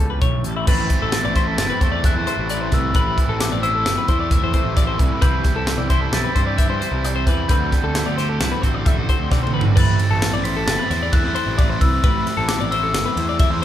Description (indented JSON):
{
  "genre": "math rock and midwest emo",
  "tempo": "132 BPM",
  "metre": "5/4",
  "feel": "straight",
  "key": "unclear",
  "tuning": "A4 = 440 Hz",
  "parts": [
    { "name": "glockenspiel with rubber mallets", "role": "melody", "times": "0.0-13.6 s", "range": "D6 to B6", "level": "-26 LUFS", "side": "left 1 dB", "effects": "none" },
    { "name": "twangy electric guitar", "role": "accompaniment", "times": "0.0-9.8 s", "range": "E2 to G4", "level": "-30 LUFS", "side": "right 7 dB", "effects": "none" },
    { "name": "twelve-string electric guitar", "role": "arpeggios", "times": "0.0-13.6 s", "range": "E4 to E5", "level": "-26 LUFS", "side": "left 6 dB", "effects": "none" },
    { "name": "fuzz picked electric bass", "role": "bass", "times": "0.0-13.6 s", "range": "F#1 to G2", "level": "-24 LUFS", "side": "equal", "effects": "overdrive" },
    { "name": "crisp fusion drum kit", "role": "drums", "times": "0.2-13.5 s", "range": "crash cymbal, hi-hat, kick drum, ride cymbal, snare drum, toms", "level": "-19 LUFS", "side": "equal", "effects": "none" },
    { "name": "biting overdriven guitar", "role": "riff", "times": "0.7-13.6 s", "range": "A2 to F#4", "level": "-28 LUFS", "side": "equal", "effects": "none" }
  ],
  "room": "light reverb",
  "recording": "band playing live in one room",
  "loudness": "-16 LUFS",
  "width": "side -11 dB against mid",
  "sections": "0.7-9.8 A section; 9.8-13.6 B section",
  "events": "drum fill 9.3-9.8",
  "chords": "0.0 A7; 0.7 Am; 5.2 Cmaj7; 7.5 D7sus4; 9.8 Am"
}